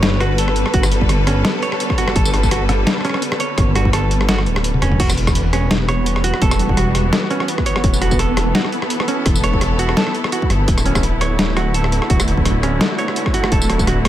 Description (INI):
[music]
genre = half-time drum and bass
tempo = 169 BPM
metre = 4/4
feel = swing 55% on 16ths, half-time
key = unclear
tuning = A4 = 440 Hz
[part]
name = clear studio string section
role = sustained chords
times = 0.0-14.1 s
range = D3 to B4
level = -23 LUFS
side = left 1 dB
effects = sidechain pumping
[part]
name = semi-hollow electric guitar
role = arpeggios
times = 0.0-14.0 s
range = C#4 to C#5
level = -24 LUFS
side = right 4 dB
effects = digital delay
[part]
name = dark detuned saw bass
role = bass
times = 0.0-14.1 s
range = D1 to G1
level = -18 LUFS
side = equal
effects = none
[part]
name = boom bap sampler-style drum kit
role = drums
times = 0.0-14.1 s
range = crash cymbal, hi-hat, rim click, snare drum, tambourine, toms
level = -21 LUFS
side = left 1 dB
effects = none
[part]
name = flickering grainy texture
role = texture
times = 0.0-14.1 s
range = B3 to B4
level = -26 LUFS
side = right 1 dB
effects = built-in reverb
[part]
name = electronic kick drum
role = drums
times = 0.7-13.9 s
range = none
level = -19 LUFS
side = equal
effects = none
[sound]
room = little or no reverb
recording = none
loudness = -14 LUFS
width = side -12 dB against mid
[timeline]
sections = 0.0-14.1 A section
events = kick drops out 4.6-5.0; drum fill 4.7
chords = 0.0 Gadd9; 5.0 Em; 10.7 D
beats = 0.03 0.38 | 0.74 1.09 1.45 1.80 | 2.16 2.51 2.87 3.22 | 3.58 3.93 4.29 4.64 | 5.00 5.35 5.71 6.06 | 6.42 6.77 7.13 7.48 | 7.84 8.19 8.55 8.90 | 9.26 9.61 9.97 10.32 | 10.68 11.03 11.39 11.74 | 12.10 12.45 12.81 13.16 | 13.52 13.87